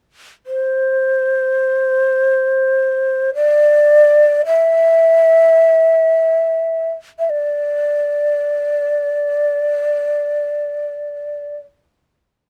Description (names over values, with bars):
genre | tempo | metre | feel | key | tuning
japanese traditional | free time | none | none | unclear | A4 = 440 Hz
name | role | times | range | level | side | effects
breathy mellow shakuhachi | melody | 0.5-11.6 s | C5 to E5 | -15 LUFS | equal | none
room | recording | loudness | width
little or no reverb | close, detailed microphones | -15 LUFS | mono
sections
0.0-12.5 A section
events
none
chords
none